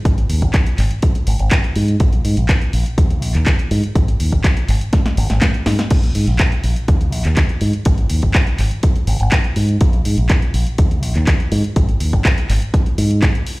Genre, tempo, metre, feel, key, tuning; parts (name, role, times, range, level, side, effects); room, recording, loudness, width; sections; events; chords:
filtered disco house; 123 BPM; 4/4; straight; A4 = 440 Hz
fingered electric bass with an envelope filter; bass; 0.1-13.3 s; Ab1 to Ab2; -16 LUFS; equal; sidechain pumping
electronic kick drum; drums; 0.1-13.3 s; -14 LUFS; equal
punchy analog drum machine; drums; 0.1-13.6 s; crash cymbal, handclaps, hi-hat, snare drum; -23 LUFS; equal; sidechain pumping on hats, sidechain pumping on cymbals
little or no reverb; played on a big sound system in a bare room, stone room reverb; -14 LUFS; side -22 dB against mid
0.0-13.6 A section
drum fill 4.9-5.9